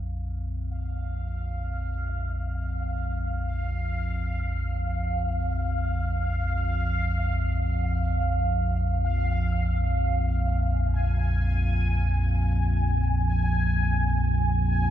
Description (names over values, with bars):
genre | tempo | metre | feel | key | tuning
dark ambient drone | free time | none | none | unclear | A4 = 440 Hz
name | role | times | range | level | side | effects
deep rumbling drone | drone | 0.0-14.9 s | Bb1 to F2 | -24 LUFS | equal | built-in reverb, wide subtle chorus
bubbling stepped-filter texture | texture | 0.0-14.9 s | F5 to Ab5 | -32 LUFS | right 1 dB | chorus, built-in reverb, shimmer reverb
room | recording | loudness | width
moderate cathedral reverb, RT60 5.6 s | none | -24 LUFS | side -11 dB against mid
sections
0.0-14.9 A section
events
fade-in on synth texture 0.0-14.9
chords
0.0 Bb5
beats
free time